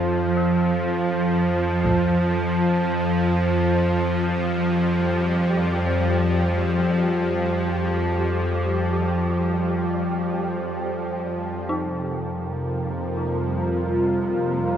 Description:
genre	dark ambient drone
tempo	free time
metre	none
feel	none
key	unclear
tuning	A4 = 440 Hz
part	dark detuned synth bell	arpeggios	0.0-14.8 s	Eb4 to G4	-36 LUFS	left 1 dB	chorus, tremolo, analog delay
part	bowed-like drone	drone	0.0-14.8 s	F2 to F3	-21 LUFS	equal	built-in reverb
part	taiko ensemble	percussion	1.8-2.0 s	none	-29 LUFS	equal	low-pass filter on perc
part	wind-like tuned noise texture	texture	4.6-14.8 s	G3 to Bb4	-30 LUFS	right 1 dB	built-in reverb, analog chorus
part	sweeping resonant pad	sustained chords	11.7-14.8 s	C3 to F4	-25 LUFS	equal	chorus
room	wet plate reverb, RT60 2.9 s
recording	dreamy mix soaked in reverb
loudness	-20 LUFS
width	side -9 dB against mid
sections	0.0-11.7 A section; 11.7-14.8 B section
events	fade-in on drum 0.0-11.7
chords	0.0 Fsus2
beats	free time

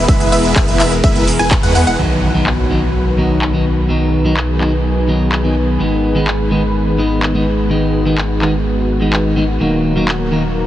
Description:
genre	EDM, festival progressive house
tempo	126 BPM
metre	4/4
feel	straight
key	unclear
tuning	A4 = 441 Hz
part	lush unison pad	sustained chords	0.0-10.7 s	D#3 to B4	-18 LUFS	left 1 dB	chorus, sidechain pumping
part	wide unison pluck	arpeggios	0.0-2.0 s	E5 to G#5	-22 LUFS	equal	sidechain pumping, dub echo
part	supersaw chords	riff	0.0-2.0 s	G#3 to G#5	-19 LUFS	right 1 dB	phaser, sidechain pumping, low-pass filter, dub echo
part	saturated sub bass	bass	0.0-10.7 s	D#1 to E2	-18 LUFS	equal	sidechain pumping
part	big-room dance drum kit	drums	0.1-10.2 s	handclaps, hi-hat, ride cymbal, tambourine	-23 LUFS	equal	low-pass filter on hats, low-pass filter on perc, low-pass filter on cymbals, low-pass filter on snare
part	electronic kick drum	drums	0.1-1.6 s	none	-14 LUFS	equal	none
part	clean electric guitar	accompaniment	2.0-10.4 s	D#3 to D#4	-18 LUFS	equal	sidechain pumping
part	impact	sound effects	2.0-3.9 s	none	-24 LUFS	equal	none
room	light reverb, digital ambience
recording	heavily compressed radio sound, multiband compression, nothing above 10.4 kHz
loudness	-12 LUFS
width	side -13 dB against mid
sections	0.0-2.0 A section; 2.0-10.7 B section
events	drop 0.0-2.0; band accent 1.5; impact 2.0-3.9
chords	0.0 E; 2.0 B; 5.8 G#m; 9.6 D#m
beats	| 0.09 0.56 1.04 1.51 | 1.99 2.47 2.94 3.42 | 3.89 4.37 4.85 5.32 | 5.80 6.28 6.75 7.23 | 7.70 8.18 8.66 9.13 | 9.61 10.09 10.56

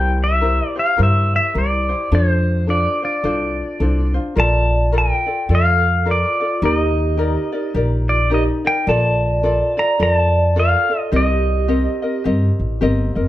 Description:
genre	Hawaiian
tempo	106 BPM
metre	4/4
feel	swing 60% on 8ths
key	F major, Bb major from 4.4 s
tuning	A4 = 440 Hz
part	pedal steel guitar	melody	0.0-12.2 s	C5 to Bb5	-20 LUFS	left 1 dB	none
part	ukulele	accompaniment	0.0-13.3 s	C4 to Eb5	-23 LUFS	left 2 dB	none
part	upright bass	bass	0.0-13.3 s	F1 to G2	-18 LUFS	equal	none
part	vibraphone with medium hard mallets	second line	4.4-12.2 s	F4 to D5	-23 LUFS	right 3 dB	tape echo
room	moderate studio reverb, RT60 0.6 s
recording	none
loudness	-15 LUFS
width	side -14 dB against mid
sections	0.0-4.4 A section; 4.4-13.3 B section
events	none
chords	0.0 C7; 2.1 F6; 4.4 Bbmaj7; 6.6 Ebmaj7; 8.9 Bbmaj7; 11.1 Cm7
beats	0.42 0.98 1.55 | 2.11 2.68 3.24 3.80 | 4.37 4.93 5.50 6.06 | 6.62 7.19 7.75 8.32 | 8.88 9.44 10.01 10.57 | 11.13 11.69 12.26 12.82

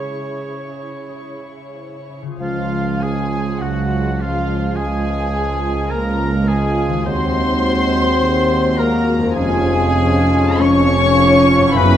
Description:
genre	classical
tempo	45-53 BPM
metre	4/4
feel	rubato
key	Db major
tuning	A4 = 440 Hz
part	warm studio violin section	melody	0.0-12.0 s	F5 to C#6	-25 LUFS	left 3 dB	none
part	clear oboe	second line	0.0-12.0 s	F4 to Db5	-26 LUFS	right 1 dB	none
part	dark studio violin section	second line	0.0-12.0 s	E4 to C#5	-25 LUFS	left 3 dB	none
part	dark studio viola section	accompaniment	0.0-12.0 s	Ab3 to G#4	-25 LUFS	right 2 dB	none
part	concert harp	arpeggios	0.0-12.0 s	F2 to C#5	-29 LUFS	left 5 dB	none
part	warm studio cello section	bass	0.0-12.0 s	Db2 to C#3	-24 LUFS	right 3 dB	none
part	mellow clarinet	second line	2.4-12.0 s	Ab3 to C#4	-26 LUFS	equal	none
part	mellow hollow silver concert flute	second line	2.4-12.0 s	F5 to Db6	-26 LUFS	left 2 dB	none
part	warm bassoon	accompaniment	2.4-12.0 s	E3 to Gb3	-28 LUFS	right 1 dB	none
part	warm French horn section	sustained chords	2.4-12.0 s	F3 to Db4	-21 LUFS	left 2 dB	none
part	warm studio double bass section	bass	2.4-12.0 s	F1 to Eb2	-23 LUFS	right 2 dB	none
part	warm tuba	bass	2.4-12.0 s	F1 to Eb2	-25 LUFS	right 3 dB	none
room	wet recital hall reverb, RT60 1.7 s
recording	none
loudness	-14 LUFS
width	side -10 dB against mid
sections	0.0-2.4 A section; 2.4-12.0 B section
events	none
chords	0.0 C#m; 2.4 Db; 7.1 Ab7/Eb; 9.4 Db/F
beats	1.11 | 2.41 3.63 4.78 5.92 | 7.07 8.23 9.37 10.60 | 11.76

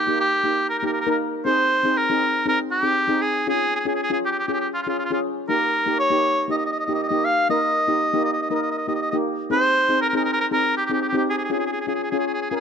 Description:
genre	calypso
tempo	119 BPM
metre	4/4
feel	straight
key	Ab major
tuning	A4 = 440 Hz
part	bright oboe	melody	0.0-12.6 s	F4 to F5	-21 LUFS	equal	none
part	steel pan	accompaniment	0.1-12.6 s	Bb3 to Bb4	-24 LUFS	left 1 dB	none
room	light reverb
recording	close, detailed microphones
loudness	-19 LUFS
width	side -7 dB against mid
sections	0.0-12.6 A section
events	none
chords	0.0 Eb; 1.5 Abadd9; 3.5 Db; 5.5 Eb; 9.5 Ab; 11.5 Db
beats	0.45 0.96 | 1.46 1.96 2.47 2.97 | 3.47 3.98 4.48 4.98 | 5.49 5.99 6.49 6.99 | 7.50 8.00 8.50 9.00 | 9.50 10.01 10.51 11.01 | 11.51 12.01 12.51

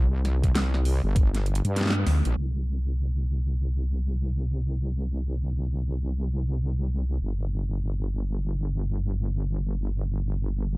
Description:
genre	glitch hop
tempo	free time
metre	none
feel	none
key	unclear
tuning	A4 = 440 Hz
part	wobble bass	bass	0.0-10.8 s	G1 to G2	-25 LUFS	equal	chorus, tube saturation
part	dubstep drum kit	drums	0.2-2.3 s	hi-hat, snare drum	-30 LUFS	equal	low-pass filter on snare, low-pass filter on hats
part	electronic kick drum	drums	0.4-1.3 s	none	-21 LUFS	equal	none
room	little or no reverb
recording	dark, warm production, low-pass filter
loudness	-24 LUFS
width	side -23 dB against mid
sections	0.0-2.4 A section; 2.4-10.8 B section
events	drop 0.0-2.4; band accent 1.9-2.2; filter sweep 2.4-10.8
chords	none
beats	free time

